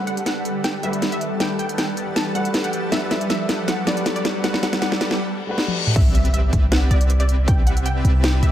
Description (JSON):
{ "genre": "future bass", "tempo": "158 BPM", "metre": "4/4", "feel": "half-time", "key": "G major", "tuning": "A4 = 440 Hz", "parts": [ { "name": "wide unison pluck", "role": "melody", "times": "0.0-8.5 s", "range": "D5 to A5", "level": "-29 LUFS", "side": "equal", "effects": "sidechain pumping, dub echo" }, { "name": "dark baby grand piano", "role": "accompaniment", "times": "0.0-6.0 s", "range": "A3 to F#5", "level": "-30 LUFS", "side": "left 2 dB", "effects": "sidechain pumping, digital delay" }, { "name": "shimmering ambient pad", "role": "sustained chords", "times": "0.0-8.5 s", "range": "C3 to A5", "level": "-32 LUFS", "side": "right 1 dB", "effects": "chorus, built-in reverb, phaser, sidechain pumping" }, { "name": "soft supersaw", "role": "riff", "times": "0.0-8.5 s", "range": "G3 to G5", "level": "-27 LUFS", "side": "equal", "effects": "sidechain pumping" }, { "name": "riser, reverse cymbal and impact", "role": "sound effects", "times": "0.1-7.5 s", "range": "none", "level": "-29 LUFS", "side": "equal", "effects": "none" }, { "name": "trap drum kit", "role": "drums", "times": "0.1-8.5 s", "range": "crash cymbal, hi-hat, snare drum, toms", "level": "-23 LUFS", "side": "equal", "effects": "none" }, { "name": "warm 808-style bass", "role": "bass", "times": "6.0-8.5 s", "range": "C2", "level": "-17 LUFS", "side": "equal", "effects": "tube saturation, sidechain pumping" }, { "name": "electronic kick drum", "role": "drums", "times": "6.0-7.6 s", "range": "none", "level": "-18 LUFS", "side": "equal", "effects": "none" } ], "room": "light reverb", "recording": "none", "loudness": "-18 LUFS", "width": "side -11 dB against mid", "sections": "0.0-6.0 A section; 6.0-8.5 B section", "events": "build-up 0.0-6.0; drum fill 0.0-5.2, 5.6-6.0; riser 0.1-5.2; filter sweep on supersaw synth 0.0-6.0; filter sweep on ambient pad 0.0-6.0; reverse cymbal 5.2-6.0; drop 6.0-8.5; impact 6.0-7.5", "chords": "0.0 Gmaj9; 6.0 Cmaj7" }